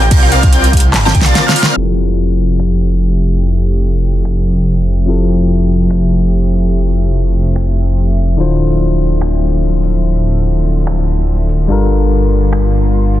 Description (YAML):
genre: future bass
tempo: 145 BPM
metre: 4/4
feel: swing 55% on 16ths, half-time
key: F major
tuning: A4 = 445 Hz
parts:
  - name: mallet-like synth pluck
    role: melody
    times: 0.0-1.4 s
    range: F5 to A5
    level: -22 LUFS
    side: right 1 dB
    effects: lush chorus, cassette tape, sidechain pumping, dub echo
  - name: airy dreamy lead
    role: arpeggios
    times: 0.0-1.7 s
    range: F6 to A6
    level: -19 LUFS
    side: equal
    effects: chorus, cassette tape, sidechain pumping, digital delay
  - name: dense compressed supersaw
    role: riff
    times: 0.0-1.7 s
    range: C4 to A5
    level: -17 LUFS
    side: equal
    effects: sidechain pumping, digital delay
  - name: wide detuned saw bass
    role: bass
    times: 0.0-13.2 s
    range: D1 to C2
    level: -13 LUFS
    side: equal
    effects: chorus, sidechain pumping
  - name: electronic kick drum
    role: drums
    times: 0.1-1.2 s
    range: none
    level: -10 LUFS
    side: equal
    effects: none
  - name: pop drum kit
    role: drums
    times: 0.1-13.2 s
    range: crash cymbal, finger snaps, handclaps, hi-hat, snare drum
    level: -17 LUFS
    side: equal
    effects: none
  - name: bell-like tine electric piano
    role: accompaniment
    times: 1.7-13.2 s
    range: D3 to C5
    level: -17 LUFS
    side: left 4 dB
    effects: sidechain pumping, digital delay
  - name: clear studio string section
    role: sustained chords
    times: 1.8-13.2 s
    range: D3 to E5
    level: -22 LUFS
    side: right 2 dB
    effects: sidechain pumping
room: light reverb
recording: dense, heavily limited modern master, low-pass filter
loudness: -10 LUFS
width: side -14 dB against mid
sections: 0.0-1.8 A section; 1.8-13.2 B section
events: drop 0.0-1.8; drum fill 0.9-1.8; band accent 1.6; filter sweep 1.8-13.2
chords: 0.0 Gm9; 1.8 Fmaj9; 8.4 Dm9; 11.7 Gm9